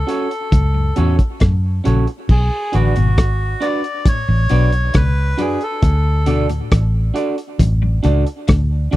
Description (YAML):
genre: roots reggae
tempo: 68 BPM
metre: 4/4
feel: straight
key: B dorian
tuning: A4 = 441 Hz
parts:
  - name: melodica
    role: melody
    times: 0.0-6.5 s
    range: F#4 to D5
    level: -24 LUFS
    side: equal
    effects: tape echo
  - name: vintage muted fingered electric bass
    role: bass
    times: 0.0-9.0 s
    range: G#1 to F#2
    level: -15 LUFS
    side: equal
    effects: none
  - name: clean electric guitar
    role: accompaniment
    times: 0.1-9.0 s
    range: C#4 to D5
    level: -23 LUFS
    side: right 2 dB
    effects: tape echo
  - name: cloth-damped thuddy drum kit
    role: drums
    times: 0.1-9.0 s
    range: crash cymbal, hi-hat, kick drum, rim click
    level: -16 LUFS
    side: equal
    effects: none
  - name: clean electric guitar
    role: arpeggios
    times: 0.5-9.0 s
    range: F#2 to D3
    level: -24 LUFS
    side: left 5 dB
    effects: tremolo
room: little or no reverb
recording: dry, close 1970s-style studio recording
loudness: -14 LUFS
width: side -16 dB against mid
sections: 0.0-2.3 A section; 2.3-9.0 B section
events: none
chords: 0.0 F#m; 2.3 Bm; 5.8 D